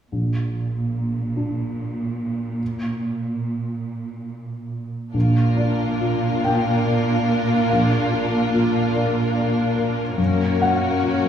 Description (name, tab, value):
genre	cinematic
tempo	48 BPM (dotted quarters)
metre	6/8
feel	rubato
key	Bb major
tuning	A4 = 440 Hz
part	dark baby grand piano	accompaniment	0.1-11.3 s	Bb1 to G5	-22 LUFS	left 1 dB	none
part	warm symphonic cello section	bass	0.1-11.3 s	Gb2 to Bb2	-25 LUFS	right 2 dB	none
part	rich symphonic violin section	second line	5.1-11.3 s	F4 to Bb4	-26 LUFS	left 6 dB	none
part	rich symphonic viola section	accompaniment	5.1-11.3 s	Bb3 to D4	-23 LUFS	right 1 dB	none
room	wet scoring stage reverb, RT60 1.6 s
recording	heard from further back in the room, small room ambience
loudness	-19 LUFS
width	side -9 dB against mid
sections	0.1-5.1 A section; 5.1-11.3 B section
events	none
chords	0.1 Bb; 5.1 Bb6; 10.2 Gb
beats	| 0.12 1.37 | 2.61 3.86 | 5.15 6.45 | 7.70 8.94 | 10.19